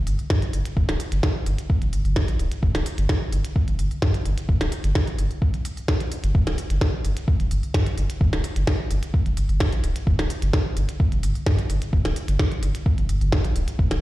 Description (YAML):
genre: minimal techno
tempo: 129 BPM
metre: 4/4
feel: straight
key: G minor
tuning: A4 = 439 Hz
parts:
  - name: round analog bass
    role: bass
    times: 0.0-14.0 s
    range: D1 to G2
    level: -23 LUFS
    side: equal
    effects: sidechain pumping
  - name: minimal click drum kit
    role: drums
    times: 0.1-14.0 s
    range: hi-hat, snare drum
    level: -28 LUFS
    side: equal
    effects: none
  - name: electronic kick drum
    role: drums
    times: 0.3-13.9 s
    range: none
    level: -21 LUFS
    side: equal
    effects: none
room: little or no reverb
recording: played on a big sound system in a bare room, large studio reverb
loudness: -20 LUFS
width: side -16 dB against mid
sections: 0.0-14.0 A section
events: none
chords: none